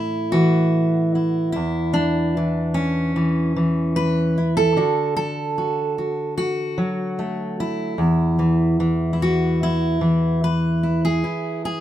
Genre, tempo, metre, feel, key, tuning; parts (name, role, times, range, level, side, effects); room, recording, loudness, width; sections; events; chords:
folk, solo fingerstyle acoustic guitar; 74 BPM; 4/4; straight; A4 = 440 Hz
fingerpicked steel-string acoustic guitar; solo; 0.0-11.8 s; E2 to B4; -18 LUFS; equal
moderate studio reverb, RT60 0.6 s; minimal, uncompressed stereo recording; -18 LUFS; side -12 dB against mid
0.0-11.8 A section
0.0 A; 1.5 N.C.; 4.8 D; 8.0 N.C.